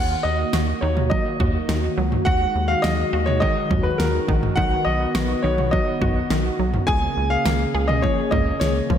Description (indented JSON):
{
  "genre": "synth-pop",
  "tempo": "104 BPM",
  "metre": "4/4",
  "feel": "straight",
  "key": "Eb minor",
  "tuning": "A4 = 440 Hz",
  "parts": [
    { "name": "warm grand piano", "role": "melody", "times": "0.0-9.0 s", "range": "Bb4 to Ab5", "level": "-24 LUFS", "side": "left 1 dB", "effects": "diffuse ambient delay" },
    { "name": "warm analog pad", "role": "sustained chords", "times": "0.0-9.0 s", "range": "Db3 to Ab4", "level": "-26 LUFS", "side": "equal", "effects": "chorus" },
    { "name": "wide unison pluck", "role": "arpeggios", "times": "0.0-9.0 s", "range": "Eb3 to Ab4", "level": "-29 LUFS", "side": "right 1 dB", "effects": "diffuse ambient delay" },
    { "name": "rubbery square bass", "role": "bass", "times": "0.0-9.0 s", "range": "Bb1 to Eb2", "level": "-24 LUFS", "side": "equal", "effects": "none" },
    { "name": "pop drum kit", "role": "drums", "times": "0.5-9.0 s", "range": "kick drum, snare drum, toms", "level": "-24 LUFS", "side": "equal", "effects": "none" }
  ],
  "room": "moderate lush hall reverb, RT60 1.8 s",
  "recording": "dreamy mix soaked in reverb",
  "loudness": "-18 LUFS",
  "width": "side -9 dB against mid",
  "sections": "0.0-9.0 A section",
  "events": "none",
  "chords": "0.0 Ebm; 4.6 B; 6.9 Bbm7/Db",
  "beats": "0.53 1.11 1.69 | 2.27 2.84 3.42 4.00 | 4.57 5.15 5.73 6.30 | 6.88 7.46 8.03 8.61"
}